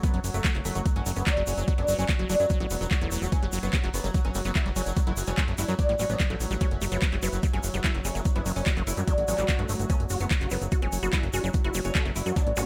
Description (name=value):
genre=psychedelic trance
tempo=146 BPM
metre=4/4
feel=straight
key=F# phrygian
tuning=A4 = 440 Hz
part: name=oud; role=melody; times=0.0-12.7 s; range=A3 to E4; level=-35 LUFS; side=equal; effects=phaser, sidechain pumping, dub echo
part: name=pulsing gated texture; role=sustained chords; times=0.0-12.7 s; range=F#3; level=-40 LUFS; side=equal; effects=chorus, built-in reverb, sidechain pumping
part: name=liquid acid bass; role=riff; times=0.0-12.7 s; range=E3 to F#4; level=-38 LUFS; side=equal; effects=phaser, sidechain pumping, dub echo
part: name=electronic kick drum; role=drums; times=0.0-12.4 s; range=none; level=-28 LUFS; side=equal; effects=overdrive, studio reverb
part: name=garage drum kit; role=drums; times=0.0-12.7 s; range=handclaps, hi-hat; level=-36 LUFS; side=equal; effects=overdrive, studio reverb
part: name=tube shaker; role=percussion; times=0.0-12.7 s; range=none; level=-40 LUFS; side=equal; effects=none
part: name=granular cloud pad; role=texture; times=0.0-12.7 s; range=F#4 to F#5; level=-44 LUFS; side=equal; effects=none
part: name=fat analog bass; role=bass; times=0.1-12.6 s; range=E1 to F#2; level=-33 LUFS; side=equal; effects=none
part: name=resonant blip pluck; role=second line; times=1.2-12.4 s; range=A3 to B3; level=-46 LUFS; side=equal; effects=none
part: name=swell and zap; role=sound effects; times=9.2-9.9, 12.6-12.7 s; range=none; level=-40 LUFS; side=equal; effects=none
room=digital ambience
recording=none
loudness=-26 LUFS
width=mono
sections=0.0-12.7 A section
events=none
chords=0.0 F#5